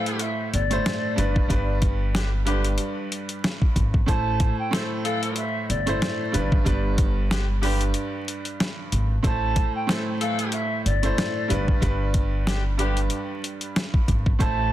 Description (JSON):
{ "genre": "hip hop, boom-bap hip-hop", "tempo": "93 BPM", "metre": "4/4", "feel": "swing 57% on 16ths", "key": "unclear", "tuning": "A4 = 440 Hz", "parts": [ { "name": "mellow hollow silver concert flute", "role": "melody", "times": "0.0-14.7 s", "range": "D5 to A5", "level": "-29 LUFS", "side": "equal", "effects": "high-pass filter, low-pass filter, tape echo" }, { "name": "bright upright piano", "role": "accompaniment", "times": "0.0-14.7 s", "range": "G2 to C5", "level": "-28 LUFS", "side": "right 2 dB", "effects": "cassette tape, high-pass filter, low-pass filter" }, { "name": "bright saxophone section", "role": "stabs", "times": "0.0-13.0 s", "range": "D3 to A4", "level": "-32 LUFS", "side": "left 2 dB", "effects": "high-pass filter, low-pass filter, tape echo" }, { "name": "boom bap sampler-style drum kit", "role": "drums", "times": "0.1-14.6 s", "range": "hi-hat, kick drum, snare drum", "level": "-24 LUFS", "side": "equal", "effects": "none" }, { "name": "upright bass", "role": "bass", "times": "0.5-14.7 s", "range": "G1 to A1", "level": "-25 LUFS", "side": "equal", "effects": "none" } ], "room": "small room ambience", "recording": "dense, heavily limited modern master, vinyl crackle", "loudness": "-21 LUFS", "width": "side -13 dB against mid", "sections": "0.0-14.7 A section", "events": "break 8.0-9.2", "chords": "0.0 Am; 1.2 G; 4.1 Am; 6.3 G; 9.2 Am; 11.5 G", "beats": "0.21 0.85 | 1.50 2.14 2.79 3.43 | 4.08 4.72 5.37 6.01 | 6.66 7.30 7.95 8.60 | 9.24 9.88 10.53 11.18 | 11.82 12.47 13.11 13.76 | 14.40" }